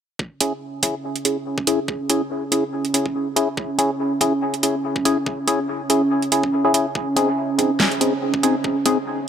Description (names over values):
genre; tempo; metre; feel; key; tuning
deep dubstep; 142 BPM; 4/4; swing 55% on 16ths, half-time; C# harmonic minor; A4 = 440 Hz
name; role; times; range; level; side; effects
dark analog pad; sustained chords; 0.7-9.3 s; C#4; -24 LUFS; right 2 dB; chorus
electronic kick drum; drums; 0.2-8.7 s; none; -27 LUFS; equal; high-pass filter on kick
percussive organ stab; stabs; 0.4-9.0 s; B#3 to G#4; -21 LUFS; left 1 dB; chorus, phaser, dub echo
dubstep drum kit; drums; 0.4-8.9 s; hi-hat, snare drum; -21 LUFS; right 2 dB; none
room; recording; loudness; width
moderate huge ambient reverb, RT60 9.0 s; none; -18 LUFS; side -8 dB against mid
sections
0.2-9.3 A section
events
filter sweep on synth stab 0.2-9.3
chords
0.2 C#m; 7.0 G#